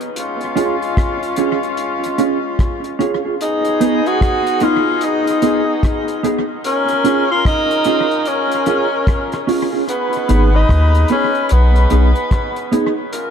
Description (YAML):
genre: roots reggae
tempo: 74 BPM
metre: 4/4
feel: swing 62% on 16ths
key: G# dorian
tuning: A4 = 440 Hz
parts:
  - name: cloth-damped thuddy drum kit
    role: drums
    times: 0.0-13.3 s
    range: hi-hat, kick drum, rim click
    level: -20 LUFS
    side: equal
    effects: tape echo
  - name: mellow horn section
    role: second line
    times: 0.2-13.3 s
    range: G#3 to B4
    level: -22 LUFS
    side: left 3 dB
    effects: dub echo
  - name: mellow electric guitar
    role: accompaniment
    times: 0.6-12.9 s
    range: B3 to G#4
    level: -20 LUFS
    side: right 3 dB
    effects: wide subtle chorus, dub echo
  - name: warm tenor saxophone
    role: melody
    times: 3.4-12.7 s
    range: B3 to F#4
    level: -18 LUFS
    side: equal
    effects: dub echo
  - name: soft dub sub bass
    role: bass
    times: 10.3-12.1 s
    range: G#1 to D#2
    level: -11 LUFS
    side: equal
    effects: none
room: light reverb, small room ambience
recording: echo-heavy mix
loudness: -14 LUFS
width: side -8 dB against mid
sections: 0.0-13.3 A section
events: none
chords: 0.2 C#; 3.4 G#m; 6.6 C#; 9.9 G#m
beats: | 0.16 0.97 1.78 2.59 | 3.40 4.21 5.02 5.83 | 6.64 7.45 8.26 9.07 | 9.88 10.69 11.50 12.31 | 13.12